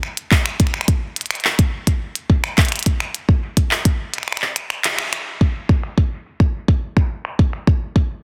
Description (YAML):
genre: IDM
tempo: 106 BPM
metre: 4/4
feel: straight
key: none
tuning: none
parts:
  - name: glitchy drum kit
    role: drums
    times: 0.0-7.6 s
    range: finger snaps, handclaps, hi-hat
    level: -23 LUFS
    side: equal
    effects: low-pass filter on snare, low-pass filter on hats, low-pass filter on room
  - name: electronic kick drum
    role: drums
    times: 0.3-8.1 s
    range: none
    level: -18 LUFS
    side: equal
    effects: none
room: little or no reverb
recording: dense, heavily limited modern master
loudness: -19 LUFS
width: mono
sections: 0.0-5.4 A section; 5.4-8.2 B section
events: kick drops out 4.3-5.4; band accent 4.8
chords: none